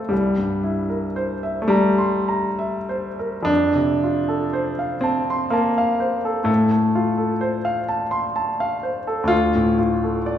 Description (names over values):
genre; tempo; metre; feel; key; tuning
classical, romantic nocturne for solo piano; 32-43 BPM (dotted quarters); 6/8; rubato; F major; A4 = 440 Hz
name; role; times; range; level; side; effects
warm baby grand piano; solo; 0.0-10.4 s; C2 to C6; -18 LUFS; equal; none
room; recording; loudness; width
wet recital hall reverb, RT60 1.4 s; recorded in a church or concert hall; -18 LUFS; side -10 dB against mid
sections
0.0-10.4 A section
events
none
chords
0.1 C7; 3.5 F; 6.5 F/A; 9.3 Dm